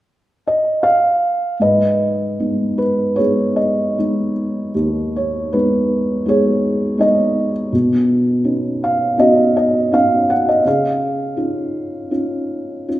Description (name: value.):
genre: classical, lyrical solo piano.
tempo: 76-83 BPM.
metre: 4/4.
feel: rubato.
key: G# dorian.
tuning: A4 = 440 Hz.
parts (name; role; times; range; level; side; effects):
felt-muted upright piano; solo; 0.5-13.0 s; D#2 to F#5; -14 LUFS; equal; none.
room: wet recital hall reverb, RT60 1.5 s.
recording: recorded in a church or concert hall, lossy compression artefacts.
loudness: -15 LUFS.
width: side -15 dB against mid.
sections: 0.0-1.6 A section; 1.6-13.0 B section.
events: none.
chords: 0.0 N.C.; 1.6 G#m; 7.7 Badd9; 10.7 C#add9.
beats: 0.07 0.82 | 1.60 2.39 3.18 3.97 | 4.75 5.51 6.26 6.99 | 7.73 8.46 9.19 9.92 | 10.65 11.38 12.13 12.90.